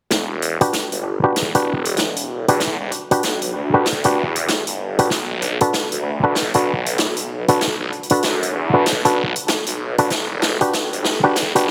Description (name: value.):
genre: glitch hop.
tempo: 96 BPM.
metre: 4/4.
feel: swing 60% on 16ths.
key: E minor.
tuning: A4 = 436 Hz.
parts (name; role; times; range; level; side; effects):
phased detuned saw bass; bass; 0.1-11.7 s; E1 to F#2; -26 LUFS; equal; phaser, tube saturation, high-pass filter.
electronic kick drum; drums; 0.1-11.5 s; none; -31 LUFS; equal; high-pass filter on kick.
swinging big-band drum kit; drums; 0.1-11.7 s; hi-hat, snare drum; -24 LUFS; equal; high-pass filter on hats, high-pass filter on snare, high-pass filter on room.
muted clav; stabs; 0.6-11.7 s; D4 to B4; -21 LUFS; equal; auto-wah, sidechain pumping, low-pass filter, tape echo.
room: moderate plate reverb, RT60 2.0 s, studio reverb.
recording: dense, heavily limited modern master, high-pass filter.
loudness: -19 LUFS.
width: mono.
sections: 0.1-11.7 A section.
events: build-up 0.1-11.7; drum fill 0.1-11.7.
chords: 0.1 Em9; 5.1 Bm7; 10.1 Em9.